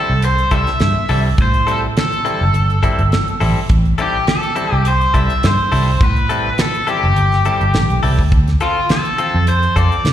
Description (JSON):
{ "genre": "straight-eighth soul blues", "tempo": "104 BPM", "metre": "4/4", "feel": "swing 54% on 16ths", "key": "A minor", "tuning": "A4 = 439 Hz", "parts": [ { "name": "raw garage guitar", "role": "melody", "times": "0.0-10.1 s", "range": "F4 to E5", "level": "-18 LUFS", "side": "left 1 dB", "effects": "overdrive, plate reverb, slapback echo" }, { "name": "direct-recorded clean electric guitar", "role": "stabs", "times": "0.0-10.0 s", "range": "G3 to A4", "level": "-23 LUFS", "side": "left 4 dB", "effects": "plate reverb, slapback echo" }, { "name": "vintage muted fingered electric bass", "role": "bass", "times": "0.1-10.1 s", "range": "G1 to C3", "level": "-16 LUFS", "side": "right 1 dB", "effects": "none" }, { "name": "damped 70s drum kit", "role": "drums", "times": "0.2-10.1 s", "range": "hi-hat, kick drum, snare drum", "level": "-18 LUFS", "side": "right 1 dB", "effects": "none" } ], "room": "light reverb", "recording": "live gig heard through the venue's PA, recital hall reverb", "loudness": "-13 LUFS", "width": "side -11 dB against mid", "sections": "0.0-10.1 A section", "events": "none", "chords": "0.0 Am7; 8.3 Dm7", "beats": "0.23 0.81 | 1.39 1.97 2.54 3.12 | 3.70 4.28 4.85 5.43 | 6.01 6.59 7.17 7.74 | 8.32 8.90 9.47 10.05" }